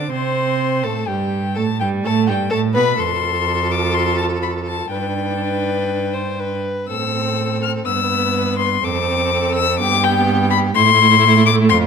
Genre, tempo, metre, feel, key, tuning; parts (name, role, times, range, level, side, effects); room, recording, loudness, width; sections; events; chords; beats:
quick classical-period movement for string quartet; 124 BPM; 4/4; rubato; A4 = 441 Hz
rich violin; melody; 0.0-11.8 s; G5 to F6; -19 LUFS; left 10 dB
warm viola; accompaniment; 0.0-11.9 s; G3 to F4; -22 LUFS; right 4 dB
rich cello; bass; 0.0-11.9 s; F2 to D3; -21 LUFS; right 5 dB
rich violin; second line; 0.1-11.9 s; E4 to C5; -24 LUFS; left 2 dB
moderate scoring stage reverb, RT60 1.5 s; -15 LUFS; side -6 dB against mid
0.0-11.9 A section
0.0 Amadd11; 1.1 Gadd9; 3.0 F; 4.9 G; 6.9 Am; 7.9 Em/G; 8.8 F; 9.8 G; 10.8 Am
0.12 0.61 | 1.09 1.57 2.06 2.53 | 3.01 3.48 3.96 4.44 | 4.92 5.42 5.90 6.39 | 6.89 7.38 7.86 8.35 | 8.84 9.32 9.80 10.28 | 10.76 11.23 11.71